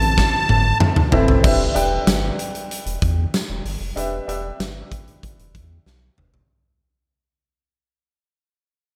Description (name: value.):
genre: 1980s-style pop.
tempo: 95 BPM.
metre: 4/4.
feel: straight.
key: unclear.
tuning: A4 = 444 Hz.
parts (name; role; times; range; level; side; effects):
musette accordion; melody; 0.0-0.8 s; A5; -24 LUFS; equal; digital delay.
warm baby grand piano; accompaniment; 0.0-6.5 s; C4 to G5; -26 LUFS; equal; analog chorus.
round analog bass; bass; 0.0-6.4 s; E1 to E2; -26 LUFS; equal; none.
huge arena drum kit; drums; 0.0-6.5 s; crash cymbal, hi-hat, kick drum, snare drum, tambourine, toms; -22 LUFS; equal; gated reverb.
room: moderate plate reverb, RT60 2.8 s.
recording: bright 1980s-style digital production.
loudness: -19 LUFS.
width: mono.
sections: 0.0-1.4 A section; 1.4-6.5 B section.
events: drum fill 0.2-1.4, 5.9-6.5; fade-out 1.4-6.5.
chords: 0.0 Amadd9; 1.4 Em7.